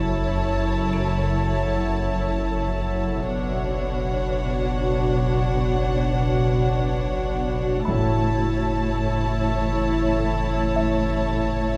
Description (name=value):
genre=cinematic, suspense film score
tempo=52 BPM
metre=4/4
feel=straight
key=unclear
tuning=A4 = 440 Hz
part: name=warm chamber violin section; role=melody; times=0.0-11.8 s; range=F#5 to A5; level=-33 LUFS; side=equal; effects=none
part: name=rich chamber violin section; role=second line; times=0.0-11.8 s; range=C#5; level=-33 LUFS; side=equal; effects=none
part: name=rich chamber viola section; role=accompaniment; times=0.0-11.8 s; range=D4 to E4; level=-32 LUFS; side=equal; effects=none
part: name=glassy FM pad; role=sustained chords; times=0.1-11.8 s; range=D4 to E5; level=-33 LUFS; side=equal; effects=ensemble chorus, built-in reverb
part: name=concert harp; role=riff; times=0.0-11.8 s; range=F#2 to B3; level=-34 LUFS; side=equal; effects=none
part: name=dark chamber cello section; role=bass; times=0.0-11.8 s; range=F#2 to B2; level=-32 LUFS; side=equal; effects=none
part: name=rich chamber double bass section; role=bass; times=0.0-11.8 s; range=F#1 to B1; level=-31 LUFS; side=equal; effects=none
part: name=saturated sub bass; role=drone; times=0.0-11.8 s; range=F#1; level=-30 LUFS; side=equal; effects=none
part: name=sub drop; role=sound effects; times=0.0-3.3 s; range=none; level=barely audible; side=none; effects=none
part: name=music box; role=texture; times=0.9-11.8 s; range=E5 to D7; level=-36 LUFS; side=equal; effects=none
part: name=taiko ensemble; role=drums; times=7.9-10.1 s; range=none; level=-32 LUFS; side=equal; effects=none
room=wet scoring stage reverb, RT60 1.6 s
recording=none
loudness=-23 LUFS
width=mono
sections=0.0-11.8 A section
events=impact 0.0-3.3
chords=0.0 F#m7; 3.3 Bmadd9/F#; 7.9 A